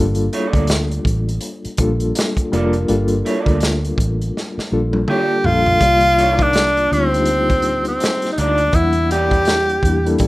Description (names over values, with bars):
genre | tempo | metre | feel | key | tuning
R&B, neo-soul | 82 BPM | 4/4 | swing 60% on 16ths | G minor | A4 = 440 Hz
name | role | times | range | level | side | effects
reed electric piano | accompaniment | 0.0-10.3 s | Eb3 to F#5 | -21 LUFS | left 2 dB | medium tremolo
vintage muted fingered electric bass | bass | 0.0-10.3 s | F1 to E2 | -20 LUFS | equal | none
crunchy breakbeat drum kit | drums | 0.1-10.3 s | hi-hat, kick drum, snare drum, toms | -21 LUFS | equal | none
electric guitar through a small old amp | second line | 0.3-9.5 s | Bb3 to D5 | -26 LUFS | right 4 dB | spring reverb
bright tenor saxophone | melody | 5.1-10.2 s | C4 to G4 | -16 LUFS | equal | slapback echo
room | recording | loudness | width
moderate studio reverb, RT60 0.5 s | rough home demo mix | -14 LUFS | side -19 dB against mid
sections
0.0-5.8 A section; 5.8-10.3 B section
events
drum fill 4.3-5.8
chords
0.0 Gm9; 5.8 Cm11; 8.7 Em7b5